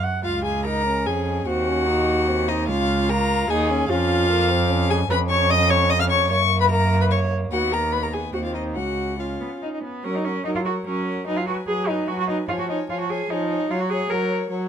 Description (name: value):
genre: quick classical-period movement for string quartet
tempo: 148 BPM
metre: 3/4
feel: straight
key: Db major, F# major from 5.1 s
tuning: A4 = 440 Hz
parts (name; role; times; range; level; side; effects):
- warm viola; accompaniment; 0.0-14.7 s; E#3 to F#5; -24 LUFS; right 2 dB; none
- warm violin; melody; 0.2-14.7 s; D#5 to E#6; -25 LUFS; left 8 dB; none
- rich violin; second line; 0.2-14.7 s; A#3 to C#5; -30 LUFS; left 4 dB; none
- rich cello; bass; 0.2-14.3 s; Db2 to A#4; -24 LUFS; right 2 dB; none
room: light reverb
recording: close, detailed microphones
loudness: -19 LUFS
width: side -8 dB against mid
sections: 0.2-10.0 A section; 10.0-14.7 B section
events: none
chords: 0.2 Db; 1.5 Ebm6; 2.7 Db; 3.9 Db/F; 5.1 C#/E#; 6.3 F#; 7.5 B/D#; 8.3 D#m69; 8.8 C#; 10.0 F#; 11.3 G#m7/F#; 12.5 C#/E#; 13.7 F#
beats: | 0.24 0.65 1.06 | 1.47 1.87 2.28 | 2.68 3.09 3.49 | 3.89 4.29 4.70 | 5.10 5.50 5.90 | 6.30 6.71 7.11 | 7.52 7.93 8.34 | 8.76 9.19 9.62 | 10.04 10.45 10.86 | 11.27 11.67 12.08 | 12.49 12.89 13.30 | 13.70 14.10 14.50